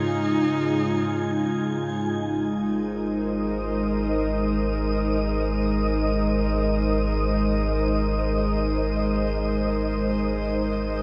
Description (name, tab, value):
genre	ambient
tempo	free time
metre	none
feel	none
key	Ab major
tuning	A4 = 440 Hz
part	dark cello	melody	0.0-1.7 s	Eb4	-31 LUFS	equal	diffuse ambient delay
part	airy breathy pad	sustained chords	0.0-11.0 s	Ab2 to C5	-26 LUFS	equal	chorus
part	wind-like tuned noise texture	texture	0.0-11.0 s	Eb5 to Ab6	-35 LUFS	equal	built-in reverb, ensemble chorus
part	warm sub bass	bass	2.2-11.0 s	Ab1	-30 LUFS	equal	none
room	moderate plate reverb, RT60 2.6 s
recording	dreamy mix soaked in reverb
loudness	-24 LUFS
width	mono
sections	0.0-2.2 A section; 2.2-11.0 B section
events	none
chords	0.0 Dbadd9/Ab; 2.2 Abadd9